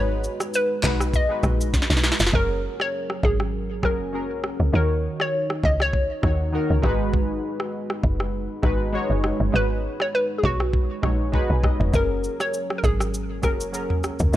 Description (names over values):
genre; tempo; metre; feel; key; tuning
afrobeats; 100 BPM; 4/4; swing 55% on 16ths; F# major; A4 = 440 Hz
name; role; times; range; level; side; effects
hollow square pluck; melody; 0.0-14.0 s; F#4 to D#5; -26 LUFS; equal; chorus, tape echo
warm analog keys; accompaniment; 0.0-14.4 s; D#3 to G#5; -27 LUFS; equal; chorus
woody log drum bass; bass; 0.0-14.4 s; E#1 to D#2; -24 LUFS; equal; none
afro-pop drum kit; drums; 0.2-14.4 s; handclaps, kick drum, rim click, shaker, snare drum, toms; -24 LUFS; equal; none
room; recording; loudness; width
little or no reverb; dry, gritty hardware recording; -20 LUFS; side -13 dB against mid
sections
0.0-2.3 A section; 2.3-14.4 B section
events
drum fill 1.7-2.3; hi-hats muted 2.3-11.9; synth keys fill 11.0-11.9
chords
0.0 G#m7; 2.3 F#add9; 4.7 D#m7; 6.8 G#m7; 11.9 F#add9